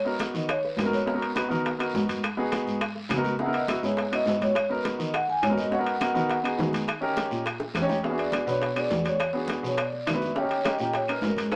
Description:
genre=Afro-Cuban jazz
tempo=207 BPM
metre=4/4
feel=straight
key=G# minor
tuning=A4 = 440 Hz
part: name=vibraphone with soft mallets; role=melody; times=0.0-11.6 s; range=G#4 to G#5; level=-31 LUFS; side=equal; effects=none
part: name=warm concert grand piano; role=accompaniment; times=0.0-11.5 s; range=A#3 to C#5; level=-31 LUFS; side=equal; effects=none
part: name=muted cello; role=bass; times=0.0-11.6 s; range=E2 to D#3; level=-35 LUFS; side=equal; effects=none
part: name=bongos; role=percussion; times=0.1-11.6 s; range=none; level=-39 LUFS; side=equal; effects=none
part: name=congas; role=percussion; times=0.1-11.6 s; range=none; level=-39 LUFS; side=equal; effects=none
part: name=guiro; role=percussion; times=0.2-11.6 s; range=none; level=-44 LUFS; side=equal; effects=none
part: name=timbales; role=percussion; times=0.2-11.6 s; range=none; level=-36 LUFS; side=equal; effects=none
part: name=claves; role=percussion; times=0.5-11.6 s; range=none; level=-40 LUFS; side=equal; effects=none
room=moderate club reverb, RT60 0.9 s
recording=none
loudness=-27 LUFS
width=mono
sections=0.0-11.6 A section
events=drum fill 7.6-8.0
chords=0.0 G#m7; 3.4 C#m9; 4.6 G#m7; 6.9 D#7; 8.0 E7; 10.4 D#7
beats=0.20 0.49 0.78 | 1.07 1.36 1.65 1.94 | 2.23 2.52 2.81 3.10 | 3.39 3.68 3.97 4.26 | 4.55 4.84 5.13 5.42 | 5.71 6.00 6.29 6.58 | 6.87 7.16 7.45 7.74 | 8.04 8.32 8.62 8.90 | 9.20 9.48 9.78 10.06 | 10.36 10.64 10.94 11.22 | 11.52

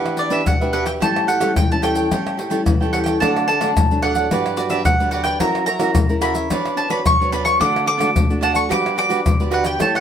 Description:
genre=samba and choro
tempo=109 BPM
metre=4/4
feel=straight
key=D major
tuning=A4 = 438 Hz
part: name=mandolin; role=melody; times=0.0-10.0 s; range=D5 to D6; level=-20 LUFS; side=left 1 dB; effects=none
part: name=cavaquinho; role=accompaniment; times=0.0-10.0 s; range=D4 to G5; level=-22 LUFS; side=right 6 dB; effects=none
part: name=nylon-string guitar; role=accompaniment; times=0.0-10.0 s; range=G2 to C#5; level=-24 LUFS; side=left 2 dB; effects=none
part: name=maracas, pandeiro, tamborim and surdo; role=percussion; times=0.1-10.0 s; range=none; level=-21 LUFS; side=left 2 dB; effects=none
room=wet studio reverb, RT60 0.6 s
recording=band playing live in one room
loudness=-16 LUFS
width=side -8 dB against mid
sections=0.0-10.0 A section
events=none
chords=0.0 Em7; 1.0 A7; 3.2 D; 4.3 Gmaj7; 5.4 F#7; 6.5 Bmadd9; 7.6 D; 8.7 Gmaj7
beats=0.47 | 1.02 1.57 2.12 2.67 | 3.21 3.76 4.31 4.86 | 5.41 5.96 6.51 7.06 | 7.61 8.15 8.70 9.25 | 9.80

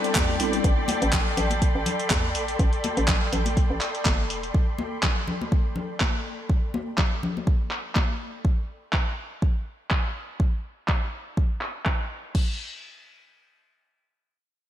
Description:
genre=deep house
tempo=123 BPM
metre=4/4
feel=swing 54% on 16ths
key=A minor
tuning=A4 = 444 Hz
part: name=soft string machine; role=sustained chords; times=0.0-8.4 s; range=A4 to C6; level=-32 LUFS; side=equal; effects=ensemble chorus, sidechain pumping
part: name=soft round pluck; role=arpeggios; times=0.0-0.6 s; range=none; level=barely audible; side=none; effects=none
part: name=mellow tine electric piano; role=stabs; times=0.0-0.6 s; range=G3 to E4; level=-30 LUFS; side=left 2 dB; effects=medium stereo tremolo, sidechain pumping, low-pass filter, ping-pong delay
part: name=deep house drum kit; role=drums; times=0.0-12.5 s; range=crash cymbal, handclaps, hi-hat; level=-29 LUFS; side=equal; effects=low-pass filter on snare, low-pass filter on hats, low-pass filter on toms, low-pass filter on perc, low-pass filter on cymbals, low-pass filter on room, gated reverb
part: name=muted studio string section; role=texture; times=0.0-4.5 s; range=A4 to G5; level=-32 LUFS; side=left 1 dB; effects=sidechain pumping
part: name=hollow knocking FM bass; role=bass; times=0.2-4.5 s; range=E1 to E2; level=-28 LUFS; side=equal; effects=sidechain pumping
part: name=electronic kick drum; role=drums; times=0.2-12.5 s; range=none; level=-23 LUFS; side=equal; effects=none
part: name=congas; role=percussion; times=0.2-8.1 s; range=none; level=-32 LUFS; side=left 3 dB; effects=none
room=light reverb, digital ambience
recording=bright 1980s-style digital production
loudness=-23 LUFS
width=side -11 dB against mid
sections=0.0-12.3 A section; 12.3-14.7 B section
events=filter sweep on drum 0.0-12.3; filter sweep on FM bass 0.0-4.5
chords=0.0 Am11; 12.3 N.C.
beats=0.15 | 0.64 1.13 1.62 2.10 | 2.59 3.08 3.57 4.06 | 4.54 5.03 5.52 6.01 | 6.50 6.98 7.47 7.96 | 8.45 8.93 9.42 9.91 | 10.40 10.88 11.37 11.86 | 12.35

